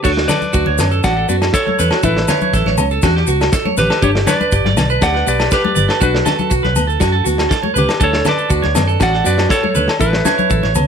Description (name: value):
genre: highlife guitar band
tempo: 120 BPM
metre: 4/4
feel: straight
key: D major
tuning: A4 = 442 Hz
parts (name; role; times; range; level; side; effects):
- clean electric guitar; melody; 0.0-10.7 s; E4 to F#5; -19 LUFS; left 1 dB; plate reverb
- clean electric guitar; arpeggios; 0.0-10.9 s; F#4 to D5; -18 LUFS; right 4 dB; slapback echo
- warm soul drum kit; drums; 0.0-10.7 s; crash cymbal, kick drum, snare drum; -19 LUFS; equal; none
- maracas; percussion; 0.0-10.9 s; none; -27 LUFS; left 6 dB; none
- nylon-string guitar; accompaniment; 0.1-10.9 s; A3 to E4; -25 LUFS; left 7 dB; none
- vintage muted fingered electric bass; bass; 0.1-10.9 s; G1 to F#2; -18 LUFS; equal; none
- agogo bells; percussion; 0.3-10.9 s; none; -25 LUFS; left 5 dB; none
- congas; percussion; 0.3-10.9 s; none; -23 LUFS; left 2 dB; none
room: light reverb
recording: none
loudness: -12 LUFS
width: side -7 dB against mid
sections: 0.0-10.9 A section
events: none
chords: 0.0 Dmaj7; 2.0 Aadd9; 4.0 G; 6.0 Bm7; 8.0 Dmaj7; 10.0 Aadd9